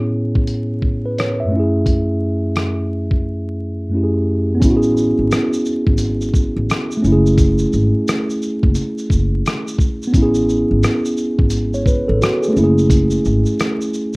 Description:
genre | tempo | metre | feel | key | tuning
lo-fi hip hop | 87 BPM | 4/4 | swing 62% on 16ths | A major | A4 = 440 Hz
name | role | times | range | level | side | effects
mellow tine electric piano | accompaniment | 0.0-14.2 s | F#2 to E5 | -17 LUFS | equal | low-pass filter
lo-fi sampler-style drum kit | drums | 0.4-14.2 s | hi-hat, kick drum, rim click, shaker | -18 LUFS | equal | none
upright bass | bass | 4.6-13.4 s | F#1 to A1 | -18 LUFS | equal | none
room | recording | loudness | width
little or no reverb | rough home demo mix, vinyl crackle | -14 LUFS | side -29 dB against mid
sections
0.0-4.6 A section; 4.6-14.2 B section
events
none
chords
0.0 Amaj9; 1.5 F#m7; 4.6 Amaj9; 7.0 F#m7; 10.1 Amaj9; 12.6 F#m7

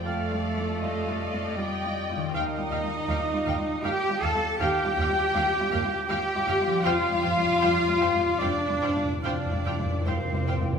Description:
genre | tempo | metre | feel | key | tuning
cinematic | 79 BPM | 3/4 | uneven beats, rubato | unclear | A4 = 436 Hz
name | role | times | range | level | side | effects
muted studio violin section | melody | 0.0-10.6 s | F5 to G5 | -37 LUFS | left 4 dB | none
muted studio violin section | second line | 0.0-10.8 s | G4 to A5 | -35 LUFS | left 2 dB | none
felt-muted upright piano | accompaniment | 0.0-10.8 s | Eb2 to F5 | -34 LUFS | left 3 dB | none
muted symphonic viola section | accompaniment | 0.0-10.6 s | C5 to F5 | -36 LUFS | equal | none
warm French horn section | sustained chords | 0.0-10.8 s | G3 to A4 | -34 LUFS | left 4 dB | none
concert harp | arpeggios | 0.0-10.7 s | Eb3 to F5 | -36 LUFS | left 5 dB | none
muted symphonic cello section | bass | 0.0-10.8 s | G3 to A4 | -28 LUFS | right 2 dB | none
muted symphonic double bass section | bass | 0.0-10.6 s | Eb2 to F2 | -34 LUFS | right 2 dB | none
flute section | second line | 0.1-10.8 s | F5 to G5 | -39 LUFS | equal | none
warm clarinet | second line | 0.1-10.8 s | G4 to A5 | -33 LUFS | right 1 dB | none
warm oboe | second line | 0.1-9.5 s | F5 | -35 LUFS | right 4 dB | none
timpani | percussion | 6.9-10.8 s | F2 | -30 LUFS | equal | none
room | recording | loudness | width
wet recital hall reverb, RT60 1.4 s | minimal, uncompressed stereo recording | -23 LUFS | side -6 dB against mid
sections
0.0-10.8 A section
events
timpani fill 6.9-10.8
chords
0.0 Fsus2; 2.3 Ebadd9; 6.9 Fsus2

